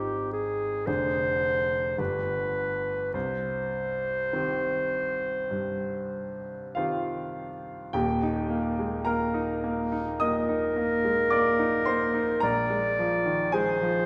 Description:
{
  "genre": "classical, romantic duo for clarinet and grand piano",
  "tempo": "47-56 BPM",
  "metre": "4/4",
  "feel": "rubato",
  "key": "C minor, Eb major from 7.9 s",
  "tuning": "A4 = 440 Hz",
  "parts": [
    { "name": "clear clarinet", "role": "melody", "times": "0.0-14.1 s", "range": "G4 to D5", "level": "-29 LUFS", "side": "equal", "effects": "none" },
    { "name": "bright grand piano", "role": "accompaniment", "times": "0.0-14.1 s", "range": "Eb1 to Eb6", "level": "-31 LUFS", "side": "equal", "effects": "none" }
  ],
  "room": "wet recital hall reverb, RT60 1.6 s",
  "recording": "none",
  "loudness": "-28 LUFS",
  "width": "mono",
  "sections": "0.0-7.9 A section; 7.9-14.1 B section",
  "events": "none",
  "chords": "0.0 Ab; 0.9 Ddim/F; 2.0 G; 3.1 Cm; 7.9 Eb; 12.4 Bb7"
}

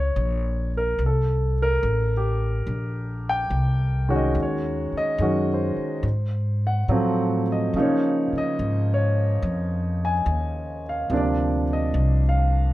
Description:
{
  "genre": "jazz ballad",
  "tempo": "71 BPM",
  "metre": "4/4",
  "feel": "swing 68% on 8ths",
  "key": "unclear",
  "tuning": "A4 = 440 Hz",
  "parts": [
    { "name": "warm grand piano", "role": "accompaniment", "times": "0.0-12.7 s", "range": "C3 to Ab5", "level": "-24 LUFS", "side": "equal", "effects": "none" },
    { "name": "upright bass", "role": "bass", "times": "0.0-12.7 s", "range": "A1 to Db3", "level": "-23 LUFS", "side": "equal", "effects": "none" }
  ],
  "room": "light reverb",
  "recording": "dark, warm production",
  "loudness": "-21 LUFS",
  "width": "side -16 dB against mid",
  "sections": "0.0-12.7 A section",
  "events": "none",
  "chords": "0.0 Bbm; 1.0 Cm7; 4.3 Ebm7; 6.0 Ab7b9; 7.7 Dbadd9; 11.1 Cm11"
}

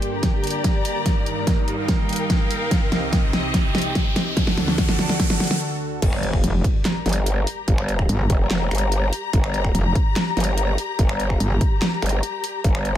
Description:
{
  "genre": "heavy wobble dubstep",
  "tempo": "145 BPM",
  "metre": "4/4",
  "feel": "half-time",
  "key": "G minor",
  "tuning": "A4 = 442 Hz",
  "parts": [
    { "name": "lush unison pad", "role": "sustained chords", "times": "0.0-13.0 s", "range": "C2 to G5", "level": "-30 LUFS", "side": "right 1 dB", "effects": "chorus, sidechain pumping" },
    { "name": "dubstep drum kit", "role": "drums", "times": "0.0-13.0 s", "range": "crash cymbal, finger snaps, handclaps, hi-hat, snare drum", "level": "-24 LUFS", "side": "equal", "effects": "studio reverb" },
    { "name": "riser and impact", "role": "sound effects", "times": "1.2-7.7 s", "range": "none", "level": "-30 LUFS", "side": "equal", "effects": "none" },
    { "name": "clear studio string section", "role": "texture", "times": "0.0-13.0 s", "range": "G3 to Bb5", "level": "-28 LUFS", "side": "left 3 dB", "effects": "sidechain pumping" },
    { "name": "electronic kick drum", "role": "drums", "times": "0.2-12.7 s", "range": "none", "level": "-21 LUFS", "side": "equal", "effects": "studio reverb" },
    { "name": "growl bass", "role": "bass", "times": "6.0-13.0 s", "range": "F1 to G1", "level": "-22 LUFS", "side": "equal", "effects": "chorus, overdrive" },
    { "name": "metallic wobble bass", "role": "bass", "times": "6.4-11.6 s", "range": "F1 to G1", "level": "-19 LUFS", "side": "equal", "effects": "chorus, overdrive" }
  ],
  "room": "little or no reverb",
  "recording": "none",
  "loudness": "-18 LUFS",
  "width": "side -11 dB against mid",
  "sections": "0.0-6.0 A section; 6.0-13.0 B section",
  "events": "build-up 0.0-6.0; drum fill 0.0-5.6; riser 1.2-5.6; break 5.6-6.0; drop 6.0-13.0; impact 6.0-7.7",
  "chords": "0.0 Gm; 1.1 Eb/G; 2.7 Cm; 4.4 D; 6.0 Gm"
}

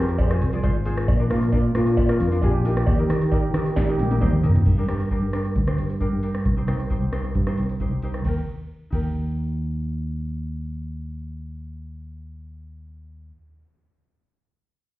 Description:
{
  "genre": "calypso",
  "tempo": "134 BPM",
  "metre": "4/4",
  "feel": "straight",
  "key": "Eb major",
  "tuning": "A4 = 440 Hz",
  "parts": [
    { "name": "steel pan", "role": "melody", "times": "0.0-4.1 s", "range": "D4 to C5", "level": "-27 LUFS", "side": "equal", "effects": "ping-pong delay" },
    { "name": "ukulele", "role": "accompaniment", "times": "0.0-13.3 s", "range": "D4 to D5", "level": "-32 LUFS", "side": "left 2 dB", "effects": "none" },
    { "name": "fingered electric bass", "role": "bass", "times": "0.0-13.3 s", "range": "Ab1 to Eb3", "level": "-24 LUFS", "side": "equal", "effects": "none" },
    { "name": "electro analog drum machine", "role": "drums", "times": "0.1-9.1 s", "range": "crash cymbal, hi-hat, kick drum, ride cymbal, rim click, snare drum, toms", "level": "-24 LUFS", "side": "equal", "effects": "none" },
    { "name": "cowbell", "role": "percussion", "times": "0.2-4.3 s", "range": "none", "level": "-34 LUFS", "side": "right 3 dB", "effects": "none" }
  ],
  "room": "light reverb",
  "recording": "heard muffled through a wall, club reverb, EQ",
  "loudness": "-20 LUFS",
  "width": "side -17 dB against mid",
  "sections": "0.0-4.7 A section; 4.7-8.2 B section; 8.2-11.8 C section",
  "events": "drum fill 3.8-4.7",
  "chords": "0.0 Fm; 1.1 Bb; 2.9 Eb; 4.7 Gm; 6.4 Cm; 8.2 Eb"
}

